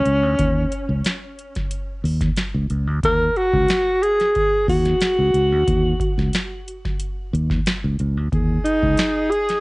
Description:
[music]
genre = funk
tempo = 91 BPM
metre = 4/4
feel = straight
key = Eb minor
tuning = A4 = 441 Hz
[part]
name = breathy alto saxophone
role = melody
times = 0.0-9.6 s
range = Db4 to Bb4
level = -19 LUFS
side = equal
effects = cassette tape, tape echo
[part]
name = fingered electric bass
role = bass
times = 0.0-8.9 s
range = Db2 to Eb2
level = -20 LUFS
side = equal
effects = none
[part]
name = booming analog drum machine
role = drums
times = 0.1-9.6 s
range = hi-hat, kick drum, snare drum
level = -24 LUFS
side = equal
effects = cassette tape
[part]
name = breathy tenor saxophone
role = second line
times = 8.3-9.6 s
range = Ab4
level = -29 LUFS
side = right 2 dB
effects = cassette tape
[sound]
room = light reverb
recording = home recording on cassette, nothing above 10.8 kHz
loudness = -17 LUFS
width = side -26 dB against mid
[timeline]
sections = 0.0-9.6 A section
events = alto saxophone solo 0.0-9.6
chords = 0.0 Ebm7

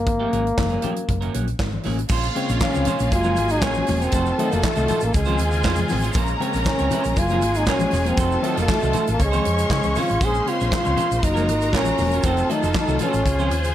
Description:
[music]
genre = disco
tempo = 118 BPM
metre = 4/4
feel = straight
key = Bb minor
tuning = A4 = 438 Hz
[part]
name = breathy trombone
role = melody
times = 0.0-13.7 s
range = Ab3 to Ab4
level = -23 LUFS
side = equal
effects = none
[part]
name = hollow-body short-scale fingered electric bass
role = bass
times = 0.0-13.7 s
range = E1 to Db3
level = -24 LUFS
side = equal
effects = tube saturation
[part]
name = mellow tine electric piano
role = accompaniment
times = 0.1-13.7 s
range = Ab2 to Db4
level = -30 LUFS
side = left 4 dB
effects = none
[part]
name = semi-hollow electric guitar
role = accompaniment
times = 0.1-13.7 s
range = Gb3 to Eb5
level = -30 LUFS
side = right 7 dB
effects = none
[part]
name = modern studio drum kit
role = drums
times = 0.1-13.7 s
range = crash cymbal, handclaps, hi-hat, kick drum, snare drum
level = -25 LUFS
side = right 1 dB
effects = gated reverb
[part]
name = congas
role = percussion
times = 0.3-13.4 s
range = none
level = -32 LUFS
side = left 5 dB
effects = none
[part]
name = warm symphonic violin section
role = second line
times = 2.1-13.7 s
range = F4 to Db6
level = -27 LUFS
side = left 2 dB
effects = none
[part]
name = rich symphonic string section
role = sustained chords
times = 2.1-13.7 s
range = Db3 to C5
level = -30 LUFS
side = equal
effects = none
[part]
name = tube shaker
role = percussion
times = 2.1-13.7 s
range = none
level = -40 LUFS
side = right 8 dB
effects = none
[sound]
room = small room ambience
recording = none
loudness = -18 LUFS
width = side -12 dB against mid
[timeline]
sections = 0.0-2.1 A section; 2.1-13.7 B section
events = none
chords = 0.1 Ab9sus4; 2.1 Bbm9; 3.1 Gbmaj9; 4.1 F7b9; 5.1 Dbmaj7; 6.2 Bbm9; 7.2 Gbmaj9; 8.2 F7b9; 9.2 Dbmaj7; 10.2 Bbm9; 11.2 Gbmaj9; 12.2 F7b9; 13.2 Dbmaj7

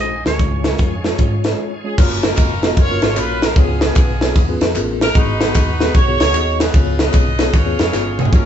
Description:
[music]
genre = uptempo gospel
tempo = 151 BPM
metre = 4/4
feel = swing 65% on 8ths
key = unclear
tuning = A4 = 442 Hz
[part]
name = twangy electric guitar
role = melody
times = 0.0-1.6 s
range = C#5 to D#5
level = -26 LUFS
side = right 2 dB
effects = none
[part]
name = mellow tine electric piano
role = accompaniment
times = 0.0-8.5 s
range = G#2 to D#5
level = -23 LUFS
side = left 3 dB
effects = medium stereo tremolo
[part]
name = bright tonewheel organ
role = sustained chords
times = 0.0-2.0, 8.3-8.5 s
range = E#3 to A#4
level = -34 LUFS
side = right 2 dB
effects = slow rotary speaker, chorus vibrato
[part]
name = dark studio string section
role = sustained chords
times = 0.0-2.0 s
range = C#5 to C#6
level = -36 LUFS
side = left 3 dB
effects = none
[part]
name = hollow-body short-scale fingered electric bass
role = bass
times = 0.0-8.5 s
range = E#1 to G#2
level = -21 LUFS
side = equal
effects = none
[part]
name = crisp fusion drum kit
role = drums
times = 0.0-8.4 s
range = crash cymbal, hi-hat, kick drum, ride cymbal, snare drum, toms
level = -15 LUFS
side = equal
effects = none
[part]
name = warm horn section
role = melody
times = 1.9-8.5 s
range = B3 to D#5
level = -21 LUFS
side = right 1 dB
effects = none
[part]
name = tambourine and handclaps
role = percussion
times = 2.0-8.5 s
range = none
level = -33 LUFS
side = left 2 dB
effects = none
[sound]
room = light reverb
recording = band playing live in one room, nothing above 8.0 kHz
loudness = -13 LUFS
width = side -9 dB against mid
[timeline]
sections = 0.0-2.0 A section; 2.0-8.5 B section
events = break 1.6-2.0; drum fill 7.9-8.3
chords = 0.4 C#; 2.0 F#maj7; 3.6 C#7; 5.1 G#m7; 6.7 C#7

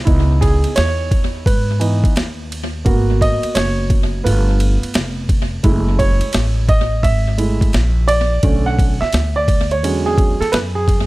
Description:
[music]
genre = hip hop, jazz-hop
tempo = 86 BPM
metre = 4/4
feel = swing 64% on 16ths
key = C# minor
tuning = A4 = 438 Hz
[part]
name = upright bass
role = bass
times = 0.0-11.1 s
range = F1 to G#2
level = -18 LUFS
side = equal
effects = none
[part]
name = warm grand piano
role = accompaniment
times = 0.1-11.1 s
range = D3 to F#5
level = -19 LUFS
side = right 3 dB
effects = none
[part]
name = boom bap sampler-style drum kit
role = drums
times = 0.1-11.1 s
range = hi-hat, kick drum, ride cymbal, snare drum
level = -18 LUFS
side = equal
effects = tape echo
[sound]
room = little or no reverb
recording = echo-heavy mix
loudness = -14 LUFS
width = side -19 dB against mid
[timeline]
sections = 0.1-11.1 A section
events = grand piano solo 0.1-11.1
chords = 0.1 C#m9; 2.9 G#m9; 4.3 G9; 5.6 F#m9; 8.4 Bm7; 9.8 E13

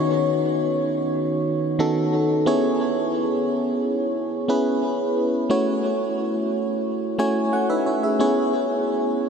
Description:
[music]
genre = pop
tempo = 89 BPM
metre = 4/4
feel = straight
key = unclear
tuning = A4 = 440 Hz
[part]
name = FM electric piano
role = solo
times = 0.0-9.3 s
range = D#3 to G#5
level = -20 LUFS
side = equal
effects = chorus, diffuse ambient delay
[sound]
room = wet huge ambient reverb, RT60 7.0 s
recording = dreamy mix soaked in reverb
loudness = -20 LUFS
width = side -6 dB against mid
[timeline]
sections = 0.0-9.3 A section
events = FM electric piano fill 6.9-8.2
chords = 0.0 Badd9/D#; 2.5 C#m7; 5.5 F#m7; 8.2 E6

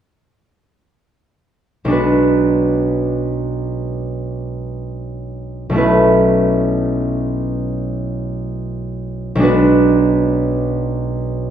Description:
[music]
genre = classical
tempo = free time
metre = none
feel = none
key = B dorian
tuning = A4 = 440 Hz
[part]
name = concert harp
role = accompaniment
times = 1.8-11.5 s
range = B1 to B4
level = -15 LUFS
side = right 1 dB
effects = none
[sound]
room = wet recital hall reverb, RT60 1.6 s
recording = minimal, uncompressed stereo recording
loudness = -15 LUFS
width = side -9 dB against mid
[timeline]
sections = 1.9-11.5 A section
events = none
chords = 1.9 Bm6; 5.8 Aadd9/B; 9.5 Bm6

